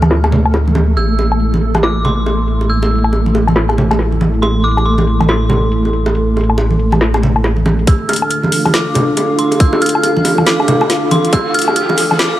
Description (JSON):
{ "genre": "deep dubstep", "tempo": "139 BPM", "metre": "4/4", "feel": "swing 62% on 16ths, half-time", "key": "D minor", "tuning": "A4 = 440 Hz", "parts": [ { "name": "dark analog pad", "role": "sustained chords", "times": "0.0-12.4 s", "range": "A3 to F5", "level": "-19 LUFS", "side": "equal", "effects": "chorus" }, { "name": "dark detuned saw bass", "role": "bass", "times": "0.0-12.4 s", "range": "A1 to D2", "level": "-16 LUFS", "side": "equal", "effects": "high-pass filter" }, { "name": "garage drum kit", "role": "drums", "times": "0.0-12.3 s", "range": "hi-hat, snare drum, woodblock", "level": "-17 LUFS", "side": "left 2 dB", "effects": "low-pass filter on hats, small room reverb, low-pass filter on perc, low-pass filter on snare" }, { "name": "bongos and congas", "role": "percussion", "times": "0.0-12.3 s", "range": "none", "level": "-17 LUFS", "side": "right 1 dB", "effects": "dub echo" }, { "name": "flickering grainy texture", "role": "texture", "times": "0.0-12.4 s", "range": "A3 to F4", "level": "-21 LUFS", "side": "equal", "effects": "built-in reverb" }, { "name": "dark detuned synth bell", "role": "melody", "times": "1.0-12.4 s", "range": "C6 to F6", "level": "-20 LUFS", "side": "right 1 dB", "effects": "chorus, low-pass filter, dub echo" }, { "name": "electronic kick drum", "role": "drums", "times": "7.9-11.4 s", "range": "none", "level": "-10 LUFS", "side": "equal", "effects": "small room reverb" }, { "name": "riser", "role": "sound effects", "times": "9.1-12.4 s", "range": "none", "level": "-26 LUFS", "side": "equal", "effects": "none" } ], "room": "light reverb, digital ambience", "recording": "high-pass filter", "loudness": "-11 LUFS", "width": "side -13 dB against mid", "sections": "0.0-7.9 A section; 7.9-12.4 B section", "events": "filter sweep on analog synth pad 0.0-7.9; build-up 7.9-12.4; filter sweep on synth bell 7.9-12.4", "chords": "0.0 D5; 1.0 Am; 7.9 Dm" }